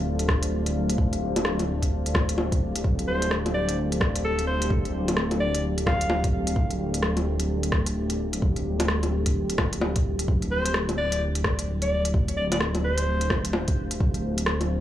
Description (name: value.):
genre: future garage.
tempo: 129 BPM.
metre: 4/4.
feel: swing 62% on 16ths.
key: unclear.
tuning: A4 = 440 Hz.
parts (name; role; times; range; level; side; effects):
deep dark ambient pad; sustained chords; 0.0-14.8 s; A3 to F5; -31 LUFS; equal; chorus, built-in reverb, sidechain pumping.
dark detuned saw bass; bass; 0.0-14.8 s; D1; -27 LUFS; equal; sidechain pumping.
organic electronic drum kit; drums; 0.2-14.7 s; bongos, hi-hat, rim click; -28 LUFS; left 1 dB; none.
electronic kick drum; drums; 0.3-14.1 s; none; -25 LUFS; equal; none.
warm alto saxophone; melody; 3.1-6.2, 10.5-13.5 s; A4 to F5; -29 LUFS; left 1 dB; analog delay.
room: little or no reverb.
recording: dry, gritty hardware recording, small room ambience.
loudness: -22 LUFS.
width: side -12 dB against mid.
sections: 0.0-14.8 A section.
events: none.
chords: 0.0 F69/D.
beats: 0.05 0.52 | 0.98 1.45 1.91 2.38 | 2.84 3.31 3.77 4.24 | 4.70 5.17 5.63 6.10 | 6.56 7.03 7.49 7.96 | 8.42 8.89 9.35 9.82 | 10.28 10.75 11.21 11.68 | 12.14 12.61 13.07 13.54 | 14.01 14.47.